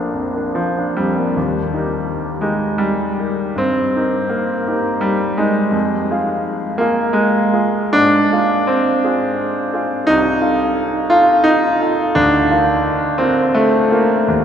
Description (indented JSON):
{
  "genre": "classical, romantic character piece for solo piano",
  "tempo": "69-89 BPM",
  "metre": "3/4",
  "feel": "rubato",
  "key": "Eb major, Bb major from 10.1 s",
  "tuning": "A4 = 440 Hz",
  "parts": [
    { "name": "bright concert grand piano", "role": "solo", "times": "0.0-14.4 s", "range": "Bb1 to F5", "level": "-14 LUFS", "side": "equal", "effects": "none" }
  ],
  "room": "wet cathedral reverb, RT60 6.0 s",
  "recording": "heard from further back in the room",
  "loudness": "-14 LUFS",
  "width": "side -8 dB against mid",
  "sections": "0.0-1.4 A section; 1.4-14.4 B section",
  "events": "none",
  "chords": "0.0 Bb; 1.4 Eb; 3.6 Eb/G; 5.7 Fm; 7.9 Fm/Ab; 10.1 F7/C; 12.2 Bb/D"
}